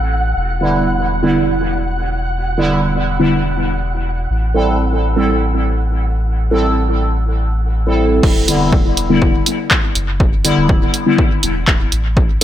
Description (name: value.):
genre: dub techno.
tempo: 122 BPM.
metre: 4/4.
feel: straight.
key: E minor.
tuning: A4 = 440 Hz.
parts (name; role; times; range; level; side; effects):
soft dub sub bass; bass; 0.0-12.4 s; D1 to A1; -18 LUFS; equal; sidechain pumping.
flickering grainy texture; texture; 0.0-8.2 s; F#5; -25 LUFS; right 1 dB; built-in reverb, sidechain pumping.
resonant sweep polysynth; stabs; 0.6-12.4 s; D3 to A4; -17 LUFS; equal; chorus, phaser, vintage 12-bit sampler grit, sidechain pumping, dub echo.
electronic kick drum; drums; 8.2-12.3 s; none; -14 LUFS; equal; none.
punchy analog drum machine; drums; 8.2-12.4 s; crash cymbal, handclaps, hi-hat; -17 LUFS; right 1 dB; dub echo.
room: light reverb.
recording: none.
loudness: -13 LUFS.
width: side -11 dB against mid.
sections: 0.0-8.2 A section; 8.2-12.4 B section.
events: none.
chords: 0.4 Em7; 4.3 Am7; 8.2 Em7.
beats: | 0.36 0.86 1.35 1.84 | 2.33 2.82 3.31 3.81 | 4.30 4.79 5.28 5.77 | 6.27 6.76 7.25 7.74 | 8.23 8.72 9.22 9.71 | 10.20 10.69 11.18 11.68 | 12.17.